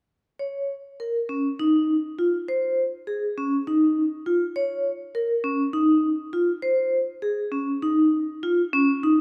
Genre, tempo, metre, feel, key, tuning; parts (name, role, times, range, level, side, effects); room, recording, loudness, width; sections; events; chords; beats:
contemporary instrumental, contemporary; 202 BPM (eighths); 7/8; straight; A4 = 440 Hz
vibraphone with hard mallets; solo; 0.4-9.2 s; Db4 to Db5; -24 LUFS; equal
light reverb; -24 LUFS; mono
0.4-8.7 A section
| 0.40 0.70 1.00 1.30 1.60 1.90 2.20 | 2.49 2.79 3.09 3.38 3.68 3.98 4.27 | 4.56 4.86 5.15 5.45 5.74 6.04 6.33 | 6.63 6.93 7.22 7.52 7.82 8.12 8.43 | 8.73 9.03